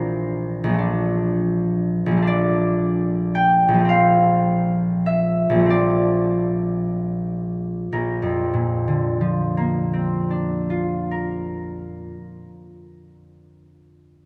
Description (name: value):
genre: classical, solo harp piece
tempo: 25-45 BPM (dotted quarters)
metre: 6/8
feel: rubato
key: Bb lydian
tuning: A4 = 440 Hz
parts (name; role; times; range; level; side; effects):
- concert harp; solo; 0.0-13.7 s; Bb1 to G5; -21 LUFS; equal; none
room: wet church reverb, RT60 3.3 s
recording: none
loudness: -21 LUFS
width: mono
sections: 0.0-7.9 A section; 7.9-12.2 B section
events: slowing down 0.0-7.9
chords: 0.0 C9/Bb; 0.8 Bbmaj7; 3.9 Dm7/Bb; 7.9 Bbadd9